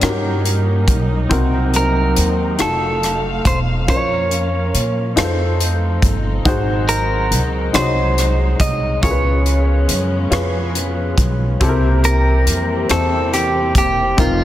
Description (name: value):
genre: slow gospel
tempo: 47 BPM (dotted quarters)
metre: 6/8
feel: straight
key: unclear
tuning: A4 = 439 Hz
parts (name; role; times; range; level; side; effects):
- clear upright piano; accompaniment; 0.0-14.4 s; Ab2 to Eb5; -21 LUFS; left 2 dB; none
- warm studio string section; sustained chords; 0.0-14.4 s; Eb3 to F5; -26 LUFS; right 1 dB; none
- upright bass; bass; 0.0-14.4 s; E1 to Bb2; -18 LUFS; equal; none
- crisp fusion drum kit; drums; 0.0-14.4 s; hi-hat, kick drum, rim click; -20 LUFS; equal; soft clipping on snare
- clean electric guitar; melody; 1.8-14.4 s; F4 to Eb5; -20 LUFS; right 1 dB; none
room: light reverb, small room ambience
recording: dense, heavily limited modern master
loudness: -14 LUFS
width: side -13 dB against mid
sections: 0.0-14.4 A section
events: none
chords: 0.0 Eb7; 1.3 Cm7b5; 2.6 F7b9; 3.9 Bbm/F; 5.2 F7; 6.5 Ab7; 9.0 Db7; 11.6 C7